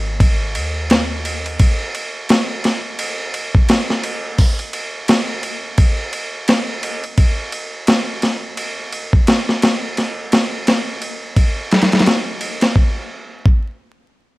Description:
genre	trip hop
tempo	86 BPM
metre	4/4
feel	swing 59% on 16ths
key	unclear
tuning	A4 = 440 Hz
part	soft 808-style bass	bass	0.0-1.6 s	G#1 to D#2	-24 LUFS	equal	tube saturation
part	dusty soul sampler-style drum kit	drums	0.2-13.7 s	hi-hat, kick drum, ride cymbal, snare drum	-15 LUFS	equal	overdrive
room	light reverb, digital ambience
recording	vinyl crackle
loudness	-15 LUFS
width	side -20 dB against mid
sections	0.0-12.8 A section; 12.8-14.4 B section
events	none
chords	none

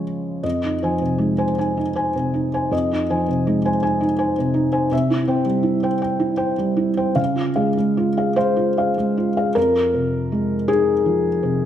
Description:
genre	neoclassical minimalist piano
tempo	49-56 BPM (dotted quarters)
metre	6/8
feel	rubato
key	F minor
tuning	A4 = 439 Hz
part	felt-muted upright piano	solo	0.0-11.7 s	F2 to Ab5	-18 LUFS	equal	none
room	moderate scoring stage reverb, RT60 1.4 s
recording	none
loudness	-18 LUFS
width	side -10 dB against mid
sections	0.4-9.6 A section; 9.6-11.7 B section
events	none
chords	0.4 Fm7; 4.9 C; 7.2 Db; 9.6 Fm7

